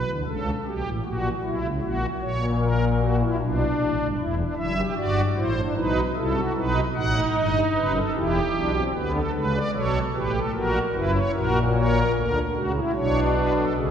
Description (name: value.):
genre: classical, baroque-style 3-part fugue for pipe organ.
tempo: 75 BPM.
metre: 3/4.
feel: straight.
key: unclear.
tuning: A4 = 444 Hz.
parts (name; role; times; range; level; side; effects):
pipe organ, strings celeste; solo; 0.0-13.9 s; E1 to F#5; -21 LUFS; equal; none.
room: wet concert hall reverb, RT60 2.2 s.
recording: heard from further back in the room.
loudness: -21 LUFS.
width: side -8 dB against mid.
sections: 0.0-13.8 A section.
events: none.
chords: 0.0 Bm; 1.0 F#/A#; 3.4 Bm; 4.2 Em; 5.8 B; 6.6 B7; 8.2 Em; 8.9 Bm; 10.5 F#/A#; 13.0 Bm.